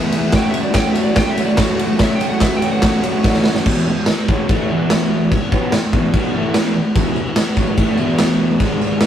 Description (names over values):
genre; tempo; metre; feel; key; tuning
garage rock duo or trio; 145 BPM; 4/4; straight; E major from 3.7 s; A4 = 440 Hz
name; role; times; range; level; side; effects
crunchy overdriven guitar; riff; 0.0-9.1 s; E2 to G#4; -18 LUFS; equal; none
raw garage drum kit; drums; 0.1-9.1 s; crash cymbal, kick drum, ride cymbal, snare drum; -16 LUFS; equal; none
tambourine; percussion; 0.1-3.5, 7.0-9.1 s; none; -37 LUFS; right 6 dB; none
electric slide guitar; melody; 0.4-3.5 s; F#4 to G5; -24 LUFS; right 2 dB; none
room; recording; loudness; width
moderate stone room reverb, RT60 0.9 s; rough rehearsal-room recording, tube saturation; -14 LUFS; side -10 dB against mid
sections
0.0-3.7 A section; 3.7-9.1 B section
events
drum fill 3.2-3.7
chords
0.3 F#m; 3.7 E5; 8.6 G#5